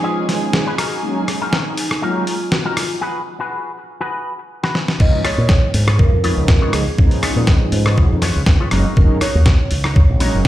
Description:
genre	nu-disco, nu disco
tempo	121 BPM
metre	4/4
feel	swing 54% on 16ths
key	Db mixolydian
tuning	A4 = 440 Hz
part	vibraphone with soft mallets	melody	0.0-10.5 s	Eb4 to Eb5	-26 LUFS	right 1 dB	dub echo
part	mellow synth brass	accompaniment	0.0-10.5 s	F3 to Eb4	-23 LUFS	equal	chorus, sidechain pumping
part	dark studio violin section	sustained chords	0.0-3.0 s	Ab4 to Ab5	-28 LUFS	right 1 dB	sidechain pumping, low-pass filter
part	electric guitar with an envelope filter	riff	0.0-10.4 s	Db4 to Db5	-25 LUFS	left 2 dB	analog chorus, dub echo
part	dusty soul sampler-style drum kit	drums	0.3-10.5 s	crash cymbal, hi-hat, rim click, snare drum	-21 LUFS	equal	studio reverb
part	fingered electric bass with an envelope filter	bass	5.0-10.5 s	Gb1 to Bb2	-16 LUFS	equal	sidechain pumping
part	electronic kick drum	drums	5.0-10.5 s	none	-13 LUFS	equal	studio reverb
room	light reverb, digital ambience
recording	played on a big sound system in a bare room, large studio reverb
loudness	-14 LUFS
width	side -14 dB against mid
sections	0.0-5.0 A section; 5.0-10.5 B section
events	build-up 0.0-5.0; break 3.0-5.0; drum fill 4.6-5.0; drop 5.0-10.5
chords	0.0 Db7; 0.8 Gb6; 3.0 Abm7; 5.0 Db7; 8.7 Gb6

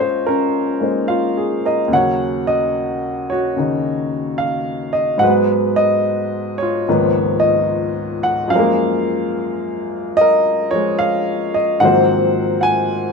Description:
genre	solo jazz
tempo	73 BPM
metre	4/4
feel	swing 68% on 8ths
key	Eb minor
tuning	A4 = 439 Hz
part	clear upright piano	solo	0.0-13.1 s	Db2 to Ab5	-15 LUFS	equal	none
room	light reverb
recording	minimal, uncompressed stereo recording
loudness	-15 LUFS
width	side -4 dB against mid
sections	0.0-1.9 A section; 1.9-13.1 B section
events	none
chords	0.0 Bbm9; 1.9 Ebm7; 5.2 Abm7; 6.9 Db13; 8.5 Gbmaj9; 11.8 Ab13

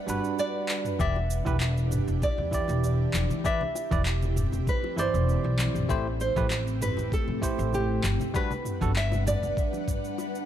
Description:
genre	sunset chillout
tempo	98 BPM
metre	4/4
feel	straight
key	unclear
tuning	A4 = 440 Hz
part	nylon-string guitar	melody	0.0-10.5 s	G4 to E5	-32 LUFS	right 2 dB	digital delay
part	ethereal airy pad	sustained chords	0.0-10.5 s	G3 to F#5	-35 LUFS	right 2 dB	ensemble chorus, built-in reverb
part	bell-like tine electric piano	accompaniment	0.1-8.9 s	E3 to D5	-32 LUFS	moving between left 4 dB and right 6 dB	auto-pan
part	upright bass	bass	0.1-10.0 s	E1 to A2	-28 LUFS	equal	none
part	deep house drum kit	drums	0.1-10.5 s	cabasa, handclaps, toms	-34 LUFS	equal	none
part	electronic kick drum	drums	1.0-10.0 s	none	-29 LUFS	equal	none
part	bongos and congas	percussion	1.2-10.3 s	none	-38 LUFS	left 4 dB	none
room	light reverb, studio reverb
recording	none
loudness	-24 LUFS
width	side -10 dB against mid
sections	0.0-10.5 A section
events	none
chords	0.0 Gmaj7; 1.0 Em7; 3.4 Cmaj7/E; 5.9 Am7; 8.0 Gmaj7

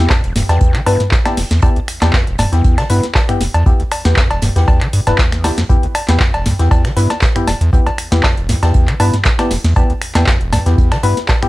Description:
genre	acid house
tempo	118 BPM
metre	4/4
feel	swing 54% on 16ths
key	E minor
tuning	A4 = 441 Hz
part	overdriven acid bass	riff	0.0-11.3 s	E1 to E3	-16 LUFS	equal	distortion, sidechain pumping
part	percussive organ stab	stabs	0.0-11.5 s	B3 to B4	-20 LUFS	left 2 dB	lush chorus, tape echo
part	booming analog drum machine	drums	0.1-11.5 s	cowbell, finger snaps, handclaps, hi-hat, snare drum, toms	-17 LUFS	equal	none
part	electronic kick drum	drums	0.1-11.4 s	none	-14 LUFS	equal	none
part	unplugged drum kit	drums	0.1-11.5 s	hi-hat, snare drum	-29 LUFS	right 2 dB	sidechain pumping on hats, high-pass filter on hats, high-pass filter on snare, high-pass filter on room
room	light reverb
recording	none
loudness	-11 LUFS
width	side -18 dB against mid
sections	0.0-11.5 A section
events	none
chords	0.0 Em

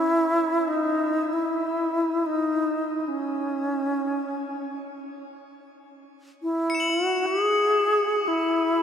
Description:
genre	world meditative, free-time meditation music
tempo	free time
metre	none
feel	none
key	unclear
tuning	A4 = 441 Hz
part	bright alto flute	melody	0.0-8.8 s	C#4 to G#4	-23 LUFS	equal	shimmer reverb, diffuse ambient delay
part	crotales	texture	0.0-0.8, 6.7-8.8 s	C#7 to F#7	-28 LUFS	left 3 dB	shimmer reverb
room	wet huge ambient reverb, RT60 6.1 s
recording	none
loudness	-22 LUFS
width	side -8 dB against mid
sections	0.0-8.8 A section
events	none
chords	none

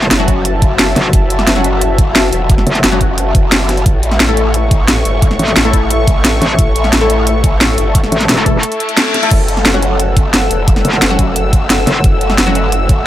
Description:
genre	dark technical drum and bass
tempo	176 BPM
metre	4/4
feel	straight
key	F# minor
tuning	A4 = 440 Hz
part	dark analog pad	sustained chords	0.0-13.1 s	F#4 to E6	-18 LUFS	left 2 dB	chorus, sidechain pumping
part	orchestra-hit-like synth stab	stabs	0.0-13.1 s	F#3 to A4	-19 LUFS	left 3 dB	built-in reverb, tape echo
part	metallic wobble bass	bass	0.0-2.8, 5.4-8.6, 10.8-12.0 s	E1 to A1	-13 LUFS	equal	chorus
part	drum and bass drum kit	drums	0.0-13.0 s	crash cymbal, hi-hat, snare drum	-14 LUFS	equal	overdrive
part	growl bass	bass	0.1-13.1 s	E1 to A1	-15 LUFS	equal	chorus, overdrive, sidechain pumping
part	electronic kick drum	drums	0.3-13.0 s	none	-12 LUFS	equal	overdrive
part	reverse cymbal	sound effects	8.8-9.3 s	none	-20 LUFS	left 2 dB	none
room	little or no reverb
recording	none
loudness	-9 LUFS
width	side -13 dB against mid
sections	0.0-13.1 A section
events	reverse cymbal 8.8-9.3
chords	0.0 F#m7; 3.9 A; 9.3 F#m7

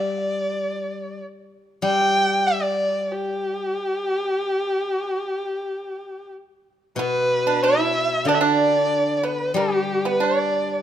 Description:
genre	chinese traditional, Chinese chamber ensemble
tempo	94 BPM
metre	4/4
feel	rubato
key	G gong mode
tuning	A4 = 440 Hz
part	warm erhu	melody	0.0-10.8 s	G4 to G5	-22 LUFS	equal	none
part	steel-string zither	accompaniment	0.0-10.8 s	B2 to G3	-27 LUFS	left 4 dB	none
part	pipa	second line	7.0-10.8 s	G3 to E4	-24 LUFS	right 7 dB	none
room	moderate recital hall reverb, RT60 1.6 s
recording	close, detailed microphones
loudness	-20 LUFS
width	side -10 dB against mid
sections	0.0-7.0 A section; 7.0-10.8 B section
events	none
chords	none

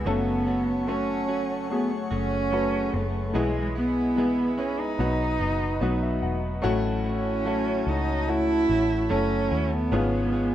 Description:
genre	pop ballad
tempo	73 BPM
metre	4/4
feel	straight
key	unclear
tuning	A4 = 440 Hz
part	dark cello	melody	0.0-10.5 s	G#3 to E4	-26 LUFS	right 2 dB	none
part	clear upright piano	accompaniment	0.0-10.5 s	G#2 to F#5	-28 LUFS	left 3 dB	none
part	airy breathy pad	sustained chords	0.0-10.5 s	A3 to C#6	-35 LUFS	left 1 dB	chorus
part	direct-recorded clean electric guitar	arpeggios	0.0-10.5 s	F#2 to G#4	-34 LUFS	right 6 dB	none
part	vintage muted fingered electric bass	bass	0.0-10.5 s	E1 to D#2	-30 LUFS	left 1 dB	none
room	moderate studio reverb, RT60 0.7 s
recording	rough home demo mix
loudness	-23 LUFS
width	side -12 dB against mid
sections	0.0-6.6 A section; 6.6-10.5 B section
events	upright piano fill 5.4-6.6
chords	0.1 F#m; 3.3 E/B; 5.0 B; 6.6 A6; 9.9 C#7/G#

